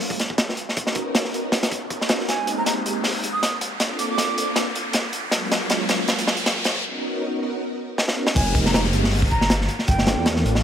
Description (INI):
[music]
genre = drum and bass, jungle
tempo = 158 BPM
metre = 4/4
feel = swing 55% on 16ths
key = unclear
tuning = A4 = 440 Hz
[part]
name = crunchy breakbeat drum kit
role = drums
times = 0.0-10.6 s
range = crash cymbal, hi-hat, kick drum, snare drum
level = -21 LUFS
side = equal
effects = high-pass filter on kick, high-pass filter on hats, high-pass filter on cymbals, high-pass filter on snare, high-pass filter on room
[part]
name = riser and downlifter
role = sound effects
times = 0.0-10.6 s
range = none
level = -30 LUFS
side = equal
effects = none
[part]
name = soft string machine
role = sustained chords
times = 0.8-10.6 s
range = Gb3 to A#4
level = -27 LUFS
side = equal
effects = ensemble chorus
[part]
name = breathy jazz flute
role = melody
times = 2.3-4.6, 8.4-10.3 s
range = G5 to Eb6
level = -28 LUFS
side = right 3 dB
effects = dub echo
[part]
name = dark detuned saw bass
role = bass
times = 8.4-10.6 s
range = F1 to E2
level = -22 LUFS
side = equal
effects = none
[sound]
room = light reverb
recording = none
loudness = -20 LUFS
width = side -9 dB against mid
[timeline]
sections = 0.0-8.4 A section; 8.4-10.6 B section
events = build-up 0.0-8.4; riser 0.0-6.8; drum fill 2.3-6.8, 8.0-8.4; break 6.8-8.4; drop 8.4-10.6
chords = 0.0 N.C.; 0.8 Bmaj9; 2.3 Abmaj9; 3.8 Bbmaj9; 5.3 Gbmaj9; 6.8 Bmaj9; 8.4 Fm11; 9.9 Gm11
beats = 0.01 0.39 | 0.77 1.15 1.52 1.91 | 2.29 2.67 3.04 3.42 | 3.80 4.18 4.56 4.94 | 5.32 5.70 6.08 6.46 | 6.84 7.22 7.60 7.98 | 8.36 8.74 9.12 9.50 | 9.88 10.26